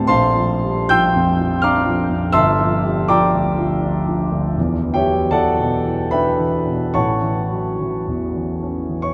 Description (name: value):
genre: classical, impressionist solo piano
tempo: 70-84 BPM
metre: 3/4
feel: rubato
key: unclear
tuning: A4 = 440 Hz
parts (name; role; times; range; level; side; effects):
- warm concert grand piano; solo; 0.0-9.1 s; G1 to G6; -18 LUFS; equal; none
room: wet cathedral reverb, RT60 6.6 s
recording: in a vast, echoing space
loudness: -18 LUFS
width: mono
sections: 0.0-9.1 A section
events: none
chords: 0.1 Bbmaj9; 2.4 Gm9; 4.6 Em7; 6.9 A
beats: | 0.08 0.90 1.63 | 2.36 3.08 3.82 | 4.57 5.33 6.12 | 6.94 7.79 8.62